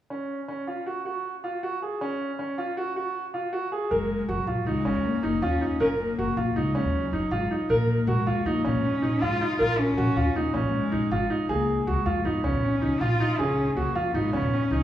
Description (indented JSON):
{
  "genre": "contemporary instrumental, chamber music in an uneven meter",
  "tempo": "158 BPM",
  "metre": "5/4",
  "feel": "straight",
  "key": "F# major",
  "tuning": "A4 = 439 Hz",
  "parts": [
    { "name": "bright concert grand piano", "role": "arpeggios", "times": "0.1-14.8 s", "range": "C#4 to A#4", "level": "-26 LUFS", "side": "right 1 dB", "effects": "none" },
    { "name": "dark cello", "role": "melody", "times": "3.9-14.8 s", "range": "F#3 to E#4", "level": "-28 LUFS", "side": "left 2 dB", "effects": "none" },
    { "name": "upright bass", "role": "bass", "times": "3.9-14.8 s", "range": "F#1 to A#2", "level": "-28 LUFS", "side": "equal", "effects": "none" }
  ],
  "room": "wet recital hall reverb, RT60 1.8 s",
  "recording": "heard from further back in the room, small room ambience",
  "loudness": "-24 LUFS",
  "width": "side -12 dB against mid",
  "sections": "0.1-3.9 A section; 3.9-14.8 B section",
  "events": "none",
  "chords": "0.1 F#5; 3.9 F#; 7.7 A#m7"
}